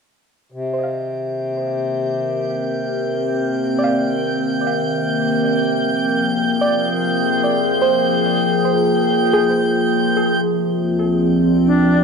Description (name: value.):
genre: ambient.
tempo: 72 BPM.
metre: 3/4.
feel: straight.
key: C minor.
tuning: A4 = 440 Hz.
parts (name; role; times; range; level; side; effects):
warbly tape-like pad; sustained chords; 1.6-12.0 s; Eb3 to D5; -18 LUFS; equal; chorus, built-in reverb, cassette tape, plate reverb.
hand-pumped harmonium; drone; 0.5-12.0 s; C3; -26 LUFS; left 2 dB; stereo widening, cassette tape.
drifting glass-harmonics texture; texture; 1.7-12.0 s; G5 to G6; -23 LUFS; left 1 dB; chorus, built-in reverb, cassette tape, plate reverb.
soft round pluck; arpeggios; 0.7-10.3 s; Ab4 to F5; -22 LUFS; right 2 dB; chorus, cassette tape, plate reverb, tape echo.
round analog bass; bass; 10.5-12.0 s; D2; -37 LUFS; right 1 dB; none.
bright reedy alto flute; melody; 11.7-12.0 s; D4; -18 LUFS; left 3 dB; plate reverb.
room: wet small room reverb, RT60 0.5 s.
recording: home recording on cassette.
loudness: -16 LUFS.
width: side -5 dB against mid.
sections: 0.5-10.4 A section; 10.4-12.0 B section.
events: fade-in on ambient pad 0.5-10.4; fade-in on synth pluck 0.5-10.4; fade-in on synth texture 0.5-10.4; fade-out on harmonium 0.5-10.4.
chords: 0.5 Cm7; 5.5 Bb7; 10.4 Dm7b5.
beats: | 0.51 1.35 2.18 | 3.01 3.84 4.67 | 5.49 6.30 7.12 | 7.94 8.77 9.61 | 10.44 11.27.